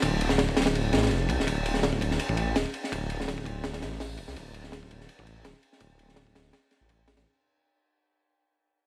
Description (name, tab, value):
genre	drum and bass, jungle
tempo	166 BPM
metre	4/4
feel	swing 54% on 16ths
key	D minor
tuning	A4 = 441 Hz
part	detuned saw bass	bass	0.0-7.2 s	D1 to C2	-32 LUFS	equal	none
part	crunchy breakbeat drum kit	drums	0.0-7.2 s	hi-hat, kick drum, ride cymbal, snare drum	-31 LUFS	equal	high-pass filter on kick, high-pass filter on cymbals, high-pass filter on hats, high-pass filter on snare, high-pass filter on room
room	little or no reverb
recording	vinyl crackle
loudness	-28 LUFS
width	mono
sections	0.0-7.3 A section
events	fade-out 0.0-7.3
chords	none